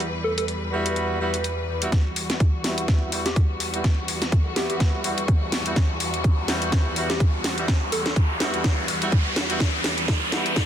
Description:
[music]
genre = bass house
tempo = 125 BPM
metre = 4/4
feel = swing 56% on 16ths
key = E minor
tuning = A4 = 440 Hz
[part]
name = rich symphonic string section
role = sustained chords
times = 0.0-10.7 s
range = E2 to B4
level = -30 LUFS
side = left 1 dB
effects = sidechain pumping, low-pass filter
[part]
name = warm horn section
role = stabs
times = 0.0-10.5 s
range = G3 to F#4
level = -30 LUFS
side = right 1 dB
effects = sidechain pumping, low-pass filter, ping-pong delay
[part]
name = garage drum kit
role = drums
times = 0.0-10.7 s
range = hi-hat, snare drum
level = -27 LUFS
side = equal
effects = none
[part]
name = soft struck synth lead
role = melody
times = 0.2-8.1 s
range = G4 to A4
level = -31 LUFS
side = equal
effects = chorus, ping-pong delay
[part]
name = electronic kick drum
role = drums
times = 1.9-10.7 s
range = none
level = -20 LUFS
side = equal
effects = none
[part]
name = riser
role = sound effects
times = 2.6-10.7 s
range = none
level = -30 LUFS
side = equal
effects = none
[sound]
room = light reverb, digital ambience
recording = dense, heavily limited modern master, high-pass filter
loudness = -21 LUFS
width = side -10 dB against mid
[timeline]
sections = 0.0-1.9 A section; 1.9-10.7 B section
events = filter sweep on string section 0.0-1.9; build-up 1.9-10.7; drum fill 1.9-10.7; filter sweep on horn section 1.9-10.7; filter sweep 1.9-10.7; riser 2.6-10.7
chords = 0.0 Emadd9

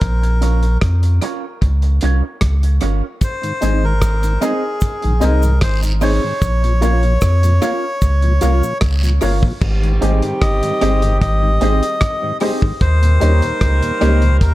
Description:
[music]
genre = roots reggae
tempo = 75 BPM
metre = 4/4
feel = straight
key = Ab major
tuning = A4 = 441 Hz
[part]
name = melodica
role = melody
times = 0.0-14.5 s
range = Ab4 to Eb5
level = -22 LUFS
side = left 1 dB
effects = tape echo
[part]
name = warm sub bass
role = bass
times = 0.0-14.5 s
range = G1 to F2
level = -14 LUFS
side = equal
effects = none
[part]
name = cloth-damped thuddy drum kit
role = drums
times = 0.0-14.5 s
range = crash cymbal, hi-hat, kick drum, rim click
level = -19 LUFS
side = equal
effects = tape echo
[part]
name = electric guitar with an envelope filter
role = accompaniment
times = 0.4-14.2 s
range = Bb3 to Db5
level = -25 LUFS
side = right 4 dB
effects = spring reverb, tape echo
[part]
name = cabasa and guiro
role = percussion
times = 3.2-9.4 s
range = none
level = -32 LUFS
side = right 3 dB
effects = none
[part]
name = mellow tonewheel organ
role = accompaniment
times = 3.4-14.3 s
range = Eb2 to G4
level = -25 LUFS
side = left 1 dB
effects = chorus vibrato, slow rotary speaker
[part]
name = dark grand piano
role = stabs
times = 3.6-14.2 s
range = Eb4 to F5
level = -23 LUFS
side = left 3 dB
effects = none
[part]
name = mellow horn section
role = second line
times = 9.6-14.5 s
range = Eb3 to Bb4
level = -24 LUFS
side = right 2 dB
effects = tape echo
[sound]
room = studio reverb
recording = echo-heavy mix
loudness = -13 LUFS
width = side -16 dB against mid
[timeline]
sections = 0.0-9.6 A section; 9.6-14.5 B section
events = none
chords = 0.0 Bbm; 3.2 Ab; 6.4 Bbm; 9.6 Abmaj7; 12.8 Eb7

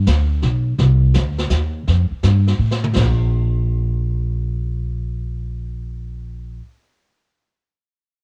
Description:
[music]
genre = jazz piano trio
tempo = 166 BPM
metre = 3/4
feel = swing 65% on 8ths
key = unclear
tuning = A4 = 440 Hz
[part]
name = upright bass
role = bass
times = 0.0-6.6 s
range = Bb1 to A2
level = -19 LUFS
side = equal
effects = none
[part]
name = jazz brush drum kit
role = drums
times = 0.1-3.3 s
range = brushed snare drum, hi-hat, kick drum, snare drum, splash cymbal, toms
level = -26 LUFS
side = equal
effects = none
[sound]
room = little or no reverb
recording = home recording on cassette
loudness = -19 LUFS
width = mono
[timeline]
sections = 0.0-3.0 A section; 3.0-5.1 B section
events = drum fill 2.6-3.0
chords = none

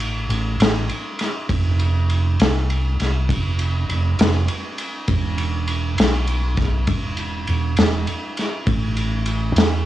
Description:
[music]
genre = slow blues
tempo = 67 BPM (dotted quarters)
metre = 12/8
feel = straight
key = A minor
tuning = A4 = 440 Hz
[part]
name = fingered electric bass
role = bass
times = 0.0-9.9 s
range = E1 to E2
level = -20 LUFS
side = right 1 dB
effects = none
[part]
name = vintage drum kit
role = drums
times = 0.0-9.7 s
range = kick drum, ride cymbal, snare drum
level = -21 LUFS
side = equal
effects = cassette tape
[sound]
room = little or no reverb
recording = home recording on cassette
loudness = -18 LUFS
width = side -13 dB against mid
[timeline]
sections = 0.0-9.9 A section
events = none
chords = none

